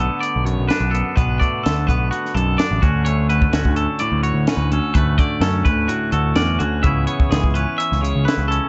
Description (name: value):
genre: math rock and midwest emo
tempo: 127 BPM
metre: 4/4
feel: straight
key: D major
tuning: A4 = 440 Hz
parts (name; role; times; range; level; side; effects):
- twangy electric guitar; accompaniment; 0.0-8.7 s; D2 to F#4; -26 LUFS; equal; none
- twangy electric guitar; arpeggios; 0.0-8.7 s; F#4 to E5; -26 LUFS; equal; none
- growling picked electric bass; bass; 0.0-8.6 s; A1 to F#2; -22 LUFS; equal; overdrive
- compact cocktail drum kit; drums; 0.2-8.6 s; hi-hat, kick drum, snare drum; -22 LUFS; equal; none
room: little or no reverb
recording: dark, warm production, nothing above 8.0 kHz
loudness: -19 LUFS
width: mono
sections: 0.0-8.7 A section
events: none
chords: 0.0 Bm7; 2.8 Dmaj7; 6.8 C#m7